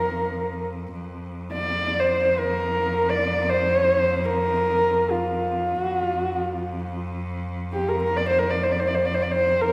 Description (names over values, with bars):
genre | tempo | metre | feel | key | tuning
mongolian traditional, Mongolian folk | free time | none | none | unclear | A4 = 444 Hz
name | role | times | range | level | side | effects
dark horsehead fiddle | melody | 0.0-9.7 s | F4 to D5 | -24 LUFS | equal | none
bright cello | drone | 0.0-9.7 s | F2 | -32 LUFS | equal | none
room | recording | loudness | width
wet recital hall reverb, RT60 1.7 s | recorded in a church or concert hall | -24 LUFS | mono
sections
0.0-9.7 A section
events
none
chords
none